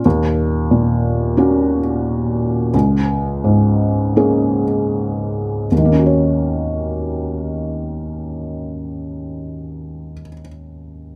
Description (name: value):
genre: classical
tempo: 75-92 BPM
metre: 4/4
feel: rubato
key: Eb minor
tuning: A4 = 442 Hz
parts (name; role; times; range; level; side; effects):
- felt-muted upright piano; accompaniment; 0.0-11.2 s; Db2 to Db5; -18 LUFS; equal; none
room: light reverb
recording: none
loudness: -18 LUFS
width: mono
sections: 0.0-5.7 A section; 5.7-8.9 B section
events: slowing down 0.0-5.7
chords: 0.0 Ebm7; 2.7 Bbm7/Db; 5.7 Ebm7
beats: | 0.05 0.70 1.37 2.04 | 2.73 3.44 4.16 4.92 | 5.71 6.50 7.29 8.09